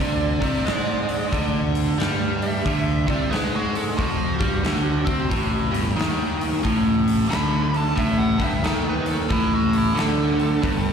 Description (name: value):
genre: blues rock power trio and southern rock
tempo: 90 BPM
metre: 4/4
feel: swing 63% on 8ths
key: unclear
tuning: A4 = 444 Hz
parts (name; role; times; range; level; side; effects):
- nasal lead guitar with a parked wah; second line; 0.0-10.9 s; E4 to B5; -29 LUFS; right 3 dB; overdrive, slapback echo
- biting overdriven guitar; riff; 0.0-10.9 s; G2 to C4; -22 LUFS; equal; slapback echo
- fuzz picked electric bass; bass; 0.0-10.9 s; G1 to C3; -26 LUFS; equal; overdrive
- huge arena drum kit; drums; 0.0-10.8 s; hi-hat, kick drum, snare drum; -26 LUFS; equal; none
room: little or no reverb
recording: live gig heard through the venue's PA, recital hall reverb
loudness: -19 LUFS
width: side -7 dB against mid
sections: 0.0-10.9 A section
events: lead electric guitar solo 0.0-10.9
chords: 0.0 D7; 5.3 Gsus2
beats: 0.65 1.32 1.98 | 2.65 3.31 3.98 4.64 | 5.30 5.97 6.64 7.30 | 7.97 8.63 9.30 9.97 | 10.63